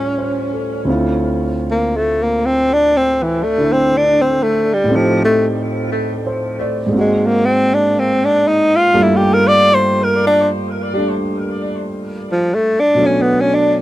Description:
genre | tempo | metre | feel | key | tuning
jazz | 60 BPM | 4/4 | swing 69% on 8ths | D minor | A4 = 440 Hz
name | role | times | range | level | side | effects
breathy tenor saxophone | melody | 0.0-13.8 s | E3 to D5 | -14 LUFS | equal | tape echo
warm grand piano | accompaniment | 0.0-13.8 s | D2 to D5 | -18 LUFS | right 1 dB | none
room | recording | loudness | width
little or no reverb | dry, close 1970s-style studio recording | -13 LUFS | side -15 dB against mid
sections
0.9-13.8 A section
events
tenor saxophone solo 0.9-13.8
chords
0.0 Aaug7; 0.9 Dm9; 4.9 Am7b5; 6.9 G#9; 8.9 Gm9; 13.0 Bm9

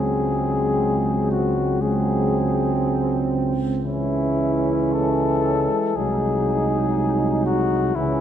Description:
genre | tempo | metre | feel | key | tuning
classical, hymn-like piece for brass band | 60 BPM | 4/4 | rubato | unclear | A4 = 440 Hz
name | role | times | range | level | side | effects
dark cornet | melody | 0.0-8.2 s | E4 to A4 | -25 LUFS | left 5 dB | none
mellow French horn section | second line | 0.0-8.2 s | B#3 to D#4 | -25 LUFS | right 8 dB | none
clear trombone | accompaniment | 0.0-8.2 s | E3 to F#3 | -28 LUFS | right 2 dB | none
dark euphonium | accompaniment | 0.0-8.2 s | G#3 | -27 LUFS | left 3 dB | none
dark tuba | bass | 0.0-8.2 s | B#1 to C#2 | -25 LUFS | equal | none
room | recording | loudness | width
moderate scoring stage reverb, RT60 1.9 s | none | -19 LUFS | side -10 dB against mid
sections
0.0-8.2 A section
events
none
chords
0.0 G#7/C#; 3.8 C#m; 6.0 G#7/B#

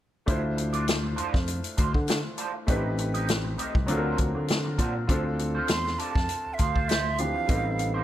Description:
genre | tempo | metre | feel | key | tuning
lush 1970s-style soul | 100 BPM | 4/4 | swing 54% on 16ths | D dorian | A4 = 440 Hz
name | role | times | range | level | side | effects
clear baby grand piano | accompaniment | 0.3-8.0 s | E3 to C5 | -32 LUFS | left 2 dB | none
electric guitar through a small old amp | riff | 0.3-8.0 s | D4 to Eb5 | -34 LUFS | right 5 dB | wah, analog chorus
overdriven tine electric piano | bass | 0.3-8.0 s | A1 to D3 | -30 LUFS | equal | none
vintage drum kit | drums | 0.3-7.9 s | hi-hat, kick drum, snare drum | -27 LUFS | equal | none
breathy silver concert flute | melody | 5.7-8.0 s | E5 to C6 | -30 LUFS | right 4 dB | none
room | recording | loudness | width
light reverb, small room ambience | none | -24 LUFS | side -12 dB against mid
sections
0.3-5.1 A section; 5.1-8.0 B section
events
none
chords
0.3 Dm7; 2.7 Am7b5; 3.9 D7alt; 5.1 Dm7; 7.5 Am7b5

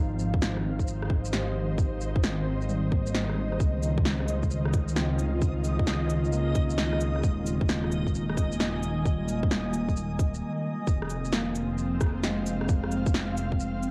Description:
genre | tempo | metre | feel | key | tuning
future garage | 132 BPM | 4/4 | swing 66% on 16ths | F minor | A4 = 438 Hz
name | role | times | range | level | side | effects
tine electric piano | accompaniment | 0.0-13.9 s | G3 to G4 | -38 LUFS | equal | sidechain pumping, cassette tape, tape echo
ethereal airy pad | sustained chords | 0.0-13.9 s | Db3 to Ab5 | -34 LUFS | equal | ensemble chorus, built-in reverb, sidechain pumping, cassette tape
dark detuned saw bass | bass | 0.0-13.9 s | Eb1 to Db2 | -33 LUFS | equal | sidechain pumping
electronic shaker, snare drum, rim click and cabasa | drums | 0.2-13.9 s | none | -35 LUFS | equal | none
electronic kick drum | drums | 0.3-13.6 s | none | -29 LUFS | equal | none
backwards swelling texture | texture | 4.6-10.4 s | Eb5 | -42 LUFS | equal | built-in reverb, cassette tape
room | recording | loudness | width
light reverb | home recording on cassette | -28 LUFS | mono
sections
0.0-10.9 A section; 10.9-13.9 B section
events
break 10.4-10.9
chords
0.0 Ab; 3.6 Dbadd9; 7.2 Ebsus4; 10.9 Fm

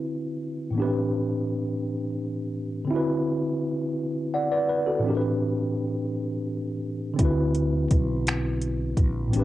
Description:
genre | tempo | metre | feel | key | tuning
slow six-eight R&B | 56 BPM (dotted quarters) | 6/8 | straight | unclear | A4 = 440 Hz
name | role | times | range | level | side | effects
tine electric piano | accompaniment | 0.0-9.4 s | A2 to F#5 | -25 LUFS | equal | overdrive, medium stereo tremolo
mellow fretless electric bass | bass | 7.2-9.4 s | A1 to D2 | -27 LUFS | equal | none
smooth R&B drum kit | drums | 7.2-9.4 s | finger snaps, hi-hat, kick drum | -23 LUFS | equal | cassette tape
room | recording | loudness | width
light reverb | home recording on cassette | -24 LUFS | side -14 dB against mid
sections
0.0-9.4 A section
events
none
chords
0.0 D13; 0.8 Am11; 2.9 D13; 5.0 Am11; 7.2 D13

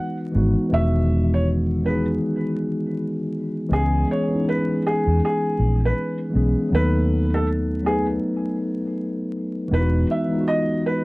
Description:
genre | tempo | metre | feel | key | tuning
lo-fi hip hop | 80 BPM | 4/4 | swing 60% on 16ths | unclear | A4 = 440 Hz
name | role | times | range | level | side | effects
felt-muted upright piano | melody | 0.0-11.0 s | G#4 to F#5 | -25 LUFS | right 1 dB | low-pass filter
mellow tine electric piano | accompaniment | 0.0-11.0 s | D#3 to B4 | -22 LUFS | equal | medium stereo tremolo, cassette tape, low-pass filter
vintage muted fingered electric bass | bass | 0.4-10.0 s | E1 to E2 | -20 LUFS | equal | none
room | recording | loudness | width
moderate studio reverb, RT60 0.5 s | dark, warm production, vinyl crackle | -19 LUFS | side -23 dB against mid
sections
0.0-11.0 A section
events
none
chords
0.0 Emaj9; 3.7 C#m7; 6.7 B7/D#; 9.7 Emaj9

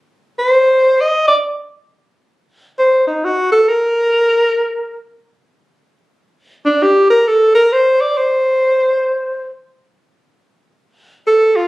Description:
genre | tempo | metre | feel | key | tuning
jazz | free time | none | none | unclear | A4 = 440 Hz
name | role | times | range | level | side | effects
breathy alto saxophone | solo | 0.4-11.7 s | D4 to Eb5 | -11 LUFS | equal | none
room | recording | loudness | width
moderate club reverb, RT60 0.7 s | recorded on a phone in the room, club reverb, compression | -11 LUFS | side -19 dB against mid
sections
0.0-10.8 A section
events
alto saxophone solo 0.0-10.8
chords
none

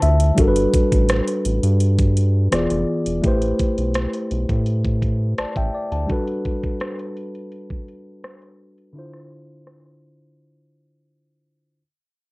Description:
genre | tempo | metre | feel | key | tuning
contemporary R&B | 84 BPM | 4/4 | straight | G major | A4 = 439 Hz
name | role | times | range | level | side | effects
mellow tine electric piano | accompaniment | 0.0-11.8 s | D3 to A5 | -22 LUFS | equal | cassette tape
round analog bass | bass | 0.0-6.1 s | E1 to A2 | -19 LUFS | equal | none
smooth R&B drum kit | drums | 0.0-9.8 s | hi-hat, kick drum, rim click | -22 LUFS | equal | none
room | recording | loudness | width
light reverb | home recording on cassette, low-pass filter | -17 LUFS | side -23 dB against mid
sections
0.4-11.8 A section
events
break 0.0-0.4, 11.1-11.8; tine electric piano fill 0.0-0.4, 5.0-6.1; fade-out 0.4-11.8; filter sweep 0.4-11.8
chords
0.4 Gmaj9; 2.5 E7b9; 3.2 Am9; 6.1 Gmaj9; 9.0 Dm9

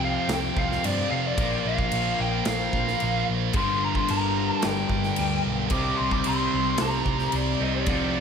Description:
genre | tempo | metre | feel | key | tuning
hard rock | 111 BPM | 4/4 | straight | unclear | A4 = 440 Hz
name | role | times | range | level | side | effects
bluesy overdriven lead guitar | melody | 0.0-8.2 s | D5 to D6 | -28 LUFS | equal | distortion, slapback echo
chorused pulse-width pad | sustained chords | 0.0-8.2 s | F3 to G5 | -37 LUFS | right 1 dB | none
high-gain distorted guitar | riff | 0.0-8.2 s | F2 to C4 | -30 LUFS | right 12 dB | distortion
overdriven semi-hollow guitar | riff | 0.0-8.2 s | F2 to C4 | -30 LUFS | left 11 dB | none
hollow-body short-scale picked electric bass | bass | 0.0-8.2 s | G1 to C3 | -30 LUFS | right 1 dB | none
big rock drum kit | drums | 0.3-8.0 s | crash cymbal, kick drum, snare drum | -30 LUFS | equal | none
crunchy overdriven guitar | riff | 3.5-8.2 s | G2 to A4 | -32 LUFS | right 1 dB | phaser
room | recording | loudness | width
moderate lush hall reverb, RT60 2.8 s | big arena sound | -22 LUFS | side -6 dB against mid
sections
0.0-8.2 A section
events
none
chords
0.0 F5/C; 1.4 Bb5; 3.6 Gm; 5.7 Cm

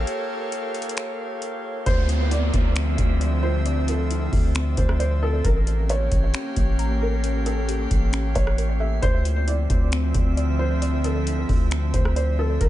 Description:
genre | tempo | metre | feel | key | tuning
hip hop, atmospheric cloud-rap | 134 BPM | 4/4 | half-time | D minor | A4 = 435 Hz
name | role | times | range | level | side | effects
airy breathy pad | sustained chords | 0.0-12.7 s | D3 to F5 | -30 LUFS | equal | chorus, sidechain pumping
long sustained 808-style bass | bass | 0.0-12.7 s | A1 to D2 | -22 LUFS | equal | none
drifting glass-harmonics texture | texture | 0.0-12.7 s | Bb3 to F5 | -35 LUFS | left 1 dB | chorus, built-in reverb
booming analog drum machine | drums | 0.1-12.7 s | finger snaps, hi-hat, kick drum, rim click | -23 LUFS | equal | none
felt-muted upright piano | melody | 1.9-12.7 s | A4 to E5 | -30 LUFS | equal | tape echo
warbly dusty pluck | arpeggios | 1.9-12.7 s | D3 to Bb5 | -35 LUFS | right 1 dB | chorus, tape echo
downlifter | sound effects | 1.9-5.4 s | none | -33 LUFS | right 2 dB | none
room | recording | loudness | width
digital ambience | echo-heavy mix, nothing above 10.4 kHz | -20 LUFS | side -14 dB against mid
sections
0.0-1.9 A section; 1.9-12.7 B section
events
break 0.1-1.9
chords
0.0 A7b9b13; 1.9 Dm9; 5.4 A7b9b13; 9.0 Dm9

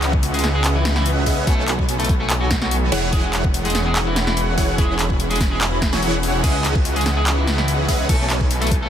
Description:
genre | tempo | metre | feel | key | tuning
future bass | 145 BPM | 4/4 | half-time | E major | A4 = 445 Hz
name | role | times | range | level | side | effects
electric guitar at the edge of break-up | melody | 0.0-8.9 s | E3 to A4 | -26 LUFS | left 1 dB | sidechain pumping, ping-pong delay
shimmering ambient pad | sustained chords | 0.0-8.9 s | C#3 to G#4 | -30 LUFS | equal | chorus, built-in reverb, phaser, sidechain pumping
airy dreamy lead | arpeggios | 0.0-8.9 s | F#5 to B5 | -32 LUFS | left 1 dB | chorus, cassette tape, sidechain pumping, ping-pong delay
concert harp | arpeggios | 0.0-8.9 s | C#4 to C#5 | -33 LUFS | right 3 dB | none
supersaw stab | riff | 0.0-8.9 s | E3 to B5 | -25 LUFS | right 1 dB | sidechain pumping, ping-pong delay
wide detuned saw bass | bass | 0.0-8.9 s | E1 to C#2 | -21 LUFS | equal | chorus, sidechain pumping
dubstep drum kit | drums | 0.0-8.8 s | crash cymbal, handclaps, hi-hat, snare drum | -24 LUFS | equal | overdrive
electronic kick drum | drums | 0.1-8.8 s | none | -20 LUFS | equal | overdrive
room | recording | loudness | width
little or no reverb | dense, heavily limited modern master | -16 LUFS | side -9 dB against mid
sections
0.0-8.9 A section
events
none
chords
0.0 C#m11; 1.5 B7sus4; 2.9 E69; 6.4 C#m11; 8.1 B7sus4

